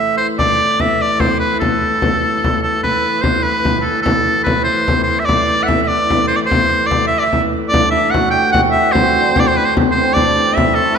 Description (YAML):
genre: medieval dance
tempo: 98 BPM (dotted quarters)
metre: 6/8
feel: straight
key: A dorian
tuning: A4 = 440 Hz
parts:
  - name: bright shawm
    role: melody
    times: 0.0-11.0 s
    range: A4 to G5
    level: -15 LUFS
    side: equal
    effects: none
  - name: warm hurdy-gurdy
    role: drone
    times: 0.0-11.0 s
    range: A2 to E3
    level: -22 LUFS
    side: equal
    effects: none
  - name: frame drum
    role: percussion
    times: 0.4-10.8 s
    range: none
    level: -18 LUFS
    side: left 2 dB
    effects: none
  - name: hammered dulcimer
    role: second line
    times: 7.7-11.0 s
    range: A3 to G4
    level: -18 LUFS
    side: right 2 dB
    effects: none
room: wet scoring stage reverb, RT60 2.1 s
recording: minimal, uncompressed stereo recording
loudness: -12 LUFS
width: side -6 dB against mid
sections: 0.0-2.8 A section; 2.8-11.0 A section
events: none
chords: none